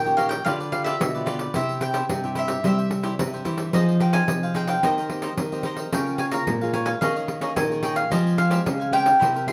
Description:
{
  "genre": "samba and choro",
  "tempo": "110 BPM",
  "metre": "4/4",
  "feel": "straight",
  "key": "F minor",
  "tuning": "A4 = 439 Hz",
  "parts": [
    { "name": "mandolin", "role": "melody", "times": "0.0-9.5 s", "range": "Eb5 to C6", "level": "-27 LUFS", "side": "equal", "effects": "none" },
    { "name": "cavaquinho", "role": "accompaniment", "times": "0.0-9.5 s", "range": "Eb4 to Ab5", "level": "-34 LUFS", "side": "equal", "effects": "none" },
    { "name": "nylon-string guitar", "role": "accompaniment", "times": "0.0-9.5 s", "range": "G2 to Ab4", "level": "-33 LUFS", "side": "equal", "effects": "none" },
    { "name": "nylon-string guitar", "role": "bass", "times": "0.0-9.5 s", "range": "Bb2 to G3", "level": "-28 LUFS", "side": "equal", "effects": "none" },
    { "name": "pandeiro", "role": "percussion", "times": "0.1-9.5 s", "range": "none", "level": "-32 LUFS", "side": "equal", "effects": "none" }
  ],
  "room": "moderate studio reverb, RT60 0.8 s",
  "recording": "none",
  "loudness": "-23 LUFS",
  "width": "mono",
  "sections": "0.0-9.5 A section",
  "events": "none",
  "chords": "0.5 G7/D; 1.6 C; 3.7 Fm7; 4.8 Cm7/Eb; 5.9 Db6; 7.0 Eb7sus4; 8.1 Fmadd9",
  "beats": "0.46 1.00 | 1.55 2.10 2.65 3.19 | 3.74 4.29 4.84 5.38 | 5.93 6.48 7.02 7.57 | 8.12 8.66 9.21"
}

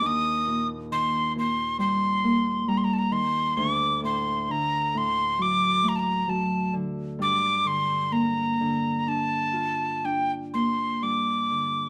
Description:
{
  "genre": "celtic folk, Celtic slow air",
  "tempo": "60-70 BPM",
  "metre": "4/4",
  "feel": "rubato",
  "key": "G minor",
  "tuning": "A4 = 440 Hz",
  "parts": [
    { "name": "breathy mid whistle", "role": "melody", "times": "0.0-11.9 s", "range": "G5 to Eb6", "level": "-27 LUFS", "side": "equal", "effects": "none" },
    { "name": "Celtic harp", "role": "accompaniment", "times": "0.0-11.9 s", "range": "D2 to G4", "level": "-30 LUFS", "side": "equal", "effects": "none" }
  ],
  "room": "moderate large studio reverb, RT60 1.1 s",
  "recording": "band playing live in one room",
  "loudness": "-25 LUFS",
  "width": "mono",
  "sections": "0.0-11.0 A section",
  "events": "none",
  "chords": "0.0 Eb6; 3.6 D; 7.2 Gm7; 11.0 Gm",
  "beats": "| 0.03 0.91 1.79 2.66 | 3.56 4.48 5.39 6.29 | 7.21 8.13 9.06 10.04 | 11.03"
}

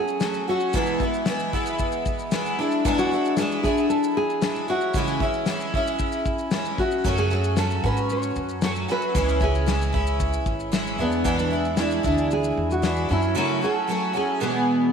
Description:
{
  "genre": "acoustic pop",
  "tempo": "114 BPM",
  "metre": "4/4",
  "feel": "straight",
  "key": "F# minor",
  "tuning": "A4 = 440 Hz",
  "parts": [
    { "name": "nylon-string guitar", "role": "melody", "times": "0.0-14.9 s", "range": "B3 to C#5", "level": "-26 LUFS", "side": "right 2 dB", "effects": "tape echo" },
    { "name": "picked twelve-string acoustic guitar", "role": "accompaniment", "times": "0.0-14.9 s", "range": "E2 to G#4", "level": "-24 LUFS", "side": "equal", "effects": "double-tracked left and right" },
    { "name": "natural country drum kit", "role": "drums", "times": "0.1-13.3 s", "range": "kick drum, shaker, snare drum", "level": "-28 LUFS", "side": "left 2 dB", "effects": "none" },
    { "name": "upright bass", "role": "bass", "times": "7.0-13.3 s", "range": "G#1 to G#2", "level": "-26 LUFS", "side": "equal", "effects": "none" }
  ],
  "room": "moderate echo chamber reverb, RT60 1.8 s, small room ambience",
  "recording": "1960s-style stereo",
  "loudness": "-21 LUFS",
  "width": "side -6 dB against mid",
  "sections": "0.0-14.9 A section",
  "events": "none",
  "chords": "0.0 F#m; 0.7 E; 2.6 E7; 4.7 C#m; 7.0 F#m; 9.1 C#m; 11.0 E7; 13.1 F#m; 14.4 E",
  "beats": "0.22 | 0.75 1.27 1.80 2.32 | 2.85 3.37 3.90 4.42 | 4.95 5.47 6.00 6.52 | 7.05 7.57 8.10 8.62 | 9.15 9.67 10.20 10.72 | 11.25 11.78 12.30 12.83 | 13.36 13.88 14.41"
}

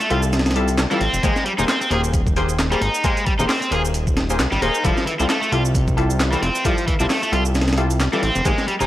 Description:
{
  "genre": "breakbeat, breaks",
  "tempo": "133 BPM",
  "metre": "4/4",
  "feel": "swing 57% on 16ths",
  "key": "unclear",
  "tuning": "A4 = 437 Hz",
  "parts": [
    { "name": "cranked stack guitar", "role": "riff", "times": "0.0-8.8 s", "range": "E3 to Ab4", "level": "-23 LUFS", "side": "equal", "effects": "overdrive, vintage 12-bit sampler grit, tape echo" },
    { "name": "breakbeat sampler-style drum kit", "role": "drums", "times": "0.0-8.8 s", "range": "hi-hat, kick drum, snare drum", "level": "-22 LUFS", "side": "equal", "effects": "small room reverb" },
    { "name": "electronic shaker and handclaps", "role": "drums", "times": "0.0-8.9 s", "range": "none", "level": "-29 LUFS", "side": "right 1 dB", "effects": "overdrive, small room reverb" },
    { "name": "orchestra-hit-like synth stab", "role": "stabs", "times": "0.1-8.9 s", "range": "G3 to C5", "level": "-24 LUFS", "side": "left 2 dB", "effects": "built-in reverb, tape echo" },
    { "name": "fat analog bass", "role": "bass", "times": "0.1-8.9 s", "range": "Eb1 to C2", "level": "-21 LUFS", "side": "equal", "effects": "none" }
  ],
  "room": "light reverb",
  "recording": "dry, gritty hardware recording, vinyl crackle",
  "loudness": "-17 LUFS",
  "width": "side -14 dB against mid",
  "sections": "0.0-8.9 A section",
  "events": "none",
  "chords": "0.0 Fmaj9; 1.2 Abmaj9; 4.8 Fmaj9",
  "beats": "0.33 0.78 | 1.23 1.69 2.14 2.59 | 3.04 3.49 3.94 4.39 | 4.84 5.29 5.75 6.20 | 6.65 7.10 7.55 8.00 | 8.45"
}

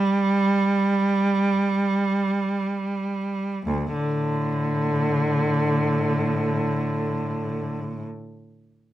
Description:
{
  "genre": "classical, free, expressive piece for unaccompanied cello",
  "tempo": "free time",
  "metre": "none",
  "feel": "none",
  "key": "unclear",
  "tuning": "A4 = 443 Hz",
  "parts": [
    { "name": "rich cello", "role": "solo", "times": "0.0-8.1 s", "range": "D2 to G3", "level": "-21 LUFS", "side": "right 1 dB", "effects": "none" }
  ],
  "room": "moderate studio reverb, RT60 0.7 s",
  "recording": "none",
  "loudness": "-21 LUFS",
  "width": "side -13 dB against mid",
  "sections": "0.0-3.6 A section; 3.6-8.9 B section",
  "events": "slowing down 0.0-3.6",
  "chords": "none",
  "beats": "free time"
}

